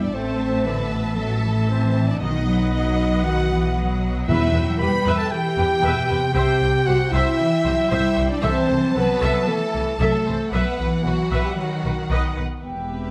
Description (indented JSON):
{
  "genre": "cinematic",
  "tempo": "116 BPM",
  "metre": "4/4",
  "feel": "straight",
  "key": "unclear",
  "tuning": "A4 = 440 Hz",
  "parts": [
    { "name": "warm symphonic violin section", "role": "melody", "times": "0.0-13.1 s", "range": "E5 to A5", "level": "-36 LUFS", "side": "equal", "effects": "none" },
    { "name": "mellow clarinet", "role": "second line", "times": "0.0-13.1 s", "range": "B3 to B5", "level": "-31 LUFS", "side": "equal", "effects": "none" },
    { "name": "rich symphonic violin section", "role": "second line", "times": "0.0-13.1 s", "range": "F#4 to B5", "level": "-33 LUFS", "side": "equal", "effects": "none" },
    { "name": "clear symphonic viola section", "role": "accompaniment", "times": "0.0-13.1 s", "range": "F#4 to E5", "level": "-31 LUFS", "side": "equal", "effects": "none" },
    { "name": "mellow French horn section", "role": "sustained chords", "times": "0.0-13.1 s", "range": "F#3 to B4", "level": "-27 LUFS", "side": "equal", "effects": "none" },
    { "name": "rich symphonic cello section", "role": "bass", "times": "0.0-13.1 s", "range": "E2 to A3", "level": "-28 LUFS", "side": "equal", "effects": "none" },
    { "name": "rich symphonic double bass section", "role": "bass", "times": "0.0-13.1 s", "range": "E1 to E2", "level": "-26 LUFS", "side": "equal", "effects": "none" },
    { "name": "timpani", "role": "percussion", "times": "2.2-5.0 s", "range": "E2 to B2", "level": "-30 LUFS", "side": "equal", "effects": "none" },
    { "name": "mellow large flute ensemble", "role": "second line", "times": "12.6-13.1 s", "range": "G5", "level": "-34 LUFS", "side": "equal", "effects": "none" }
  ],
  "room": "moderate recital hall reverb, RT60 1.5 s",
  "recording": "none",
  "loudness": "-21 LUFS",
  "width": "mono",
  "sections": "0.0-12.6 A section",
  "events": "none",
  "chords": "0.1 Am; 2.2 B; 4.3 Emadd9; 6.4 C; 8.4 Am/C; 10.5 Bsus4; 11.6 B",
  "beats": "| 0.14 0.66 1.18 1.69 | 2.21 2.73 3.24 3.76 | 4.28 4.80 5.32 5.83 | 6.35 6.87 7.39 7.91 | 8.43 8.95 9.47 9.99 | 10.52 11.04 11.57 12.10 | 12.62"
}